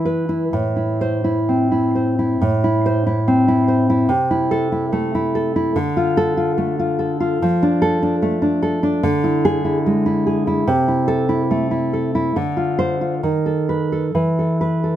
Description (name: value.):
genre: romantic piece for solo classical guitar.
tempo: 63-75 BPM.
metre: 2/4.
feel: rubato.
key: A minor.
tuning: A4 = 439 Hz.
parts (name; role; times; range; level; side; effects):
nylon-string guitar; solo; 0.0-15.0 s; A2 to C5; -16 LUFS; equal; none.
room: light reverb.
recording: none.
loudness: -16 LUFS.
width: side -11 dB against mid.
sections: 0.0-2.4 A section; 2.4-15.0 A section.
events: none.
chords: 0.0 E5; 0.5 Am; 4.1 Am/C; 5.8 Dm; 7.4 Dm/F; 9.0 E7/D; 10.7 Am/C; 12.3 Dm7; 13.2 B7/D#; 14.1 Esus4.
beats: | 0.54 1.48 | 2.40 3.27 | 4.09 4.93 | 5.77 6.60 | 7.43 8.23 | 9.04 9.86 | 10.67 11.50 | 12.34 13.22 | 14.14.